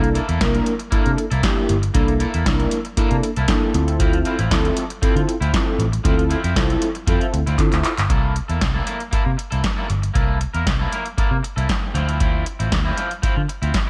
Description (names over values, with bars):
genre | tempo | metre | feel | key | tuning
early-eighties boogie funk | 117 BPM | 4/4 | straight | unclear | A4 = 440 Hz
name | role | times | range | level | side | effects
mellow synth brass | accompaniment | 0.0-7.9 s | Bb3 to Bb4 | -25 LUFS | equal | chorus
electric guitar at the edge of break-up | riff | 0.0-13.9 s | F3 to Bb4 | -30 LUFS | equal | subtle chorus
vintage muted picked electric bass | bass | 0.0-13.7 s | G1 to D3 | -24 LUFS | equal | none
electro analog drum machine | drums | 0.0-13.9 s | handclaps, hi-hat, kick drum, snare drum | -24 LUFS | equal | gated reverb
room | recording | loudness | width
little or no reverb | none | -20 LUFS | mono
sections
0.0-8.1 A section; 8.1-13.9 B section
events
drum fill 7.6-8.1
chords
0.0 C13; 3.7 Dm9; 8.1 C6; 11.9 Dm9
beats
0.41 0.92 1.44 | 1.95 2.46 2.97 3.49 | 4.00 4.51 5.03 5.54 | 6.05 6.56 7.08 7.59 | 8.10 8.62 9.13 9.64 | 10.15 10.67 11.18 11.69 | 12.21 12.72 13.23 13.74